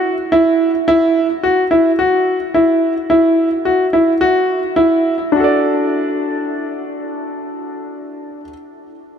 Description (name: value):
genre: electronica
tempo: 108 BPM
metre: 4/4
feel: straight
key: D major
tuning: A4 = 440 Hz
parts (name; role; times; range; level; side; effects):
- warm grand piano; solo; 0.0-8.5 s; D4 to D5; -13 LUFS; equal; digital delay
room: wet huge ambient reverb, RT60 8.4 s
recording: none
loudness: -12 LUFS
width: side -7 dB against mid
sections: 0.0-5.3 A section; 5.3-7.5 B section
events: drop 0.0-5.3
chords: 0.0 Esus2; 5.3 D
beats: 0.32 | 0.88 1.43 1.99 2.54 | 3.10 3.65 4.21 4.76 | 5.32 5.88 6.43 6.99